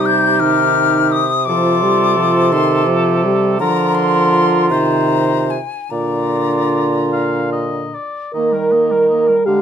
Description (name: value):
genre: classical, slow romantic movement for wind quintet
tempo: 48-58 BPM (dotted quarters)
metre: 6/8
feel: rubato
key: Eb major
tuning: A4 = 439 Hz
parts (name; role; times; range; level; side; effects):
- mellow silver concert flute; melody; 0.0-9.6 s; G5 to G6; -19 LUFS; left 7 dB; none
- warm oboe; second line; 0.0-9.6 s; G4 to F5; -24 LUFS; left 4 dB; none
- mellow French horn; accompaniment; 0.0-9.6 s; D3 to Bb4; -17 LUFS; equal; none
- mellow clarinet; accompaniment; 0.0-9.6 s; G3 to G4; -20 LUFS; right 6 dB; none
- mellow bassoon; bass; 0.0-9.6 s; Bb2 to Eb3; -19 LUFS; right 3 dB; none
room: moderate studio reverb, RT60 0.8 s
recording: dark, warm production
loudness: -13 LUFS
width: side -8 dB against mid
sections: 0.0-8.3 A section; 8.3-9.6 B section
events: none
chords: 0.0 Cm; 1.5 F7/C; 3.6 Bb/D; 4.7 Ab69/C; 5.9 Bb; 8.3 Eb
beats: 0.43 | 1.49 2.54 | 3.61 4.72 | 5.92 7.14 | 8.35 9.47